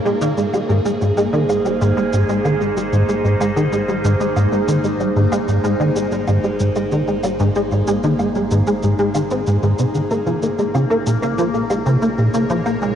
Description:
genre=ambient, sequencer-driven space music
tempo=94 BPM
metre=4/4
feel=straight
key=Ab major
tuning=A4 = 436 Hz
part: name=evolving wavetable pad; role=sustained chords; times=0.0-13.0 s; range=Bb3 to Db5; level=-21 LUFS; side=equal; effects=phaser, built-in reverb
part: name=analog drone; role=bass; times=1.3-13.0 s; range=Ab1 to Bb1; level=-39 LUFS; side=equal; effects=chorus, phaser, tube saturation
part: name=plucky analog bass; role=riff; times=0.1-12.9 s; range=Ab2 to C4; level=-17 LUFS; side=equal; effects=ensemble chorus, tape echo
part: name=shaker and woodblock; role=percussion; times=0.1-12.9 s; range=none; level=-33 LUFS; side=right 2 dB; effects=tape echo
room=wet huge ambient reverb, RT60 7.4 s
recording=worn, warbling old tape, cassette tape, warbly pitch drift, nothing above 10.8 kHz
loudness=-15 LUFS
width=side -9 dB against mid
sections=0.0-13.0 A section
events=fade-in on synth drone 0.0-13.0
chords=0.0 Ab; 10.1 Bbm

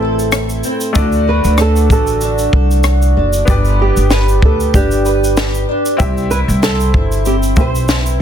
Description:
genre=acoustic pop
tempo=95 BPM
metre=4/4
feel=swing 55% on 16ths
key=G major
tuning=A4 = 440 Hz
part: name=flamenco guitar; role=melody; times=0.0-8.2 s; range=G4 to C5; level=-20 LUFS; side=right 5 dB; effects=plate reverb
part: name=clear upright piano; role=accompaniment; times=0.0-8.2 s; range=A3 to E5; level=-25 LUFS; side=left 6 dB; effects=plate reverb
part: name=fingerpicked twelve-string acoustic guitar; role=accompaniment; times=0.0-8.2 s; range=A2 to C5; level=-18 LUFS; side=equal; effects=double-tracked left and right, plate reverb
part: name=upright bass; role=bass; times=0.0-8.2 s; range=F#1 to D2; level=-14 LUFS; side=equal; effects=none
part: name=compact cocktail drum kit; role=drums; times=0.2-8.2 s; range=kick drum, rim click, shaker, snare drum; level=-16 LUFS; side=equal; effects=soft clipping on snare
room=light reverb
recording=dense, heavily limited modern master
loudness=-11 LUFS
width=side -9 dB against mid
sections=0.0-8.2 A section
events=none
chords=0.0 Am; 1.0 D; 3.5 G; 6.0 C

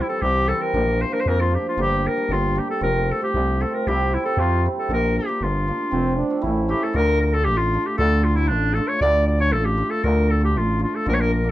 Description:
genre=klezmer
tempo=116 BPM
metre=2/4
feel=straight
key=F major, D harmonic minor from 7.0 s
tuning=A4 = 439 Hz
part: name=clear clarinet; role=melody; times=0.0-11.5 s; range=D4 to D5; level=-22 LUFS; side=left 1 dB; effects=none
part: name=cimbalom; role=accompaniment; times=0.0-11.5 s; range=E3 to F4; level=-26 LUFS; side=right 1 dB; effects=none
part: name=growling FM bass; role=bass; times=0.2-11.5 s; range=F1 to F2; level=-21 LUFS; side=equal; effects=none
part: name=clear trombone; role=second line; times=5.9-6.9 s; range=C4 to E4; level=-24 LUFS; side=right 3 dB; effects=none
room=light reverb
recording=dark, warm production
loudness=-18 LUFS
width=side -14 dB against mid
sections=0.0-7.0 A section; 7.0-11.5 B section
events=none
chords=0.0 C; 0.7 Bb; 1.8 Gm; 2.8 F; 3.9 C; 4.9 Bb; 5.9 F; 6.4 A; 7.0 Dm

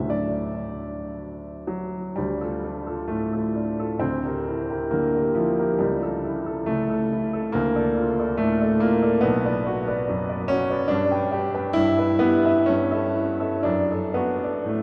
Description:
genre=classical, romantic character piece for solo piano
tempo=52-73 BPM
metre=2/4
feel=rubato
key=D minor, D major from 9.2 s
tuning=A4 = 440 Hz
part: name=clear upright piano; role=solo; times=0.0-14.8 s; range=B1 to G5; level=-24 LUFS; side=equal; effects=none
room=wet cathedral reverb, RT60 5.0 s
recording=dark, warm production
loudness=-24 LUFS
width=mono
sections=0.0-2.2 A section; 2.2-14.8 B section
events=none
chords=0.1 D; 2.2 Dm; 4.0 Em7b5/D; 5.8 A/C#; 7.5 Dm; 9.2 Bm; 10.9 G; 11.8 Em/G; 12.7 A7/G; 13.7 D/F#

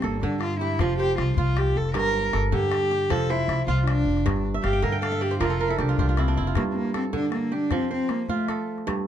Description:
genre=west african traditional, West African string and xylophone music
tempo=104 BPM (dotted quarters)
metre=12/8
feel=straight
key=G dorian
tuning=A4 = 440 Hz
part: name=warm cello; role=melody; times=0.0-8.7 s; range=A3 to Bb4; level=-26 LUFS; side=equal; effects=none
part: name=kora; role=arpeggios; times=0.0-9.1 s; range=G2 to G5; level=-28 LUFS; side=right 5 dB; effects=none
part: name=upright bass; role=bass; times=0.0-6.5 s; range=F1 to G2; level=-25 LUFS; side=left 1 dB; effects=none
part: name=calabash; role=percussion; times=0.0-9.0 s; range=none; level=-31 LUFS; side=left 6 dB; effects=none
room=moderate small room reverb, RT60 0.5 s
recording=dark, warm production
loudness=-22 LUFS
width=side -10 dB against mid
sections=0.0-6.6 A section; 6.6-9.1 B section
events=cello solo 0.0-6.6; kora fill 4.5-6.6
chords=0.0 G5; 0.8 F5; 1.9 Gm; 3.1 F5; 4.3 G5; 5.4 F5; 6.6 G5; 7.7 F

